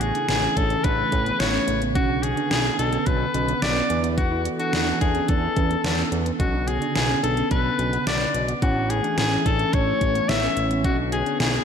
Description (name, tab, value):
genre	synth-pop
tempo	108 BPM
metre	4/4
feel	straight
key	B dorian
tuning	A4 = 440 Hz
part	warm soprano saxophone	melody	0.0-11.6 s	F#4 to E5	-24 LUFS	left 3 dB	ping-pong delay
part	warm analog pad	sustained chords	0.0-11.6 s	C#3 to A4	-28 LUFS	right 2 dB	chorus
part	soft round pluck	arpeggios	0.0-11.6 s	B3 to F#4	-30 LUFS	right 4 dB	chorus, slapback echo, ping-pong delay
part	fat analog bass	bass	0.0-11.6 s	A1 to E2	-27 LUFS	equal	none
part	pop drum kit	drums	0.0-11.5 s	hi-hat, kick drum, snare drum	-25 LUFS	equal	overdrive
room	wet concert hall reverb, RT60 2.0 s, digital ambience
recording	big arena sound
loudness	-20 LUFS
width	side -7 dB against mid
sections	0.0-11.6 A section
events	none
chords	0.0 A; 2.0 Bmadd9; 3.9 E7sus4; 6.4 Bmadd9; 8.6 A; 10.8 Bmadd9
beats	0.29 0.84 1.40 | 1.96 2.51 3.07 3.62 | 4.18 4.73 5.29 5.84 | 6.40 6.96 7.51 8.07 | 8.62 9.18 9.73 10.29 | 10.84 11.40